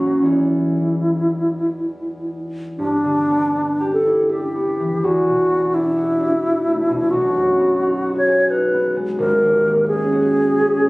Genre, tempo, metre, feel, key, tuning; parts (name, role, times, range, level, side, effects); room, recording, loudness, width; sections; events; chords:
classical, impressionist duo for alto flute and harp; 70-88 BPM; 3/4; rubato; A4 = 440 Hz
alto flute; melody; 0.0-10.9 s; D4 to C#5; -17 LUFS; equal
concert harp; accompaniment; 0.0-10.9 s; Ab1 to G#4; -21 LUFS; equal
light reverb; recorded on a phone in the room, studio reverb, compression; -16 LUFS; side -23 dB against mid
0.0-2.8 A section; 2.8-10.9 B section
0.3 Emaj7; 2.8 G6; 5.0 Em11; 7.1 B6; 9.2 Abm11